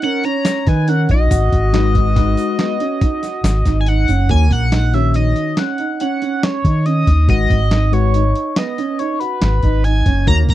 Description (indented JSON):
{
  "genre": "progressive instrumental, band music in an uneven meter",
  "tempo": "141 BPM",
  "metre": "7/4",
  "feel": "straight",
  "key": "unclear",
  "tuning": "A4 = 440 Hz",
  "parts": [
    { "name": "sync lead", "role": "melody", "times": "0.0-10.5 s", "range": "Cb5 to Bb5", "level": "-21 LUFS", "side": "left 1 dB", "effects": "chorus, phaser" },
    { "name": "mellow flugelhorn", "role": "second line", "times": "0.0-3.8 s", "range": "Gb4 to Db5", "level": "-26 LUFS", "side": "left 7 dB", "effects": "none" },
    { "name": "dark baby grand piano", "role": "arpeggios", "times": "0.0-10.5 s", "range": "Bb3 to Gb4", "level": "-22 LUFS", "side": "right 8 dB", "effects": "tape echo" },
    { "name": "dusty soul sampler-style drum kit", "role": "drums", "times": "0.0-10.5 s", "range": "hi-hat, kick drum, snare drum", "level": "-18 LUFS", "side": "equal", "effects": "overdrive" },
    { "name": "tube shaker", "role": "percussion", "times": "0.5-4.2 s", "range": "none", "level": "-36 LUFS", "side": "left 18 dB", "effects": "none" },
    { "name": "fingered electric bass", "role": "bass", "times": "0.7-10.5 s", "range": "Gb1 to Eb3", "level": "-14 LUFS", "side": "equal", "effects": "none" },
    { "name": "tine electric piano", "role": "accompaniment", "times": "1.7-10.4 s", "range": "Eb3 to Db5", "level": "-21 LUFS", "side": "left 11 dB", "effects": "auto-pan" }
  ],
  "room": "little or no reverb",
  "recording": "dry, close 1970s-style studio recording",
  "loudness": "-13 LUFS",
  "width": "side -14 dB against mid",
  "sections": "0.0-4.3 A section; 4.3-10.5 B section",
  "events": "kick and snare drop out 3.9-4.3",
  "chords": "0.0 Ebm7; 1.3 Abm7; 4.3 Ebm7; 7.3 Abm7"
}